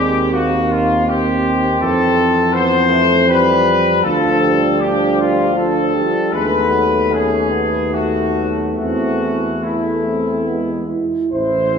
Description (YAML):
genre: classical, hymn-like piece for brass band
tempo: 70-84 BPM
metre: 3/4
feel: rubato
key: A minor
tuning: A4 = 440 Hz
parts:
  - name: clear trumpet section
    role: melody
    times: 0.0-11.8 s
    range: E4 to C5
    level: -18 LUFS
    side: left 4 dB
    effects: none
  - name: mellow French horn section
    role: second line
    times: 0.0-11.8 s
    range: A3 to C5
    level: -21 LUFS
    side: right 5 dB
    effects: none
  - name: clear trombone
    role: accompaniment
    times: 0.0-11.8 s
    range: E3 to C#4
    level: -21 LUFS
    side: right 2 dB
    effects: none
  - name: warm trombone section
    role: accompaniment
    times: 0.0-11.8 s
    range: Eb3 to E4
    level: -23 LUFS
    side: left 2 dB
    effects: none
  - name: mellow tuba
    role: bass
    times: 0.0-11.8 s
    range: A1 to F2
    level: -21 LUFS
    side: equal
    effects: none
room: wet recital hall reverb, RT60 1.8 s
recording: recorded in a church or concert hall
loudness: -14 LUFS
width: side -6 dB against mid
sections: 0.0-11.3 A section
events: none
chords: 0.0 Cm/Eb; 1.8 Fmaj7; 4.0 Dm; 6.3 B7/D#; 8.8 Am/E; 10.5 E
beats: 0.34 1.08 | 1.80 2.54 3.29 | 4.04 4.80 5.57 | 6.33 7.13 7.94 | 8.78 9.63 10.48 | 11.33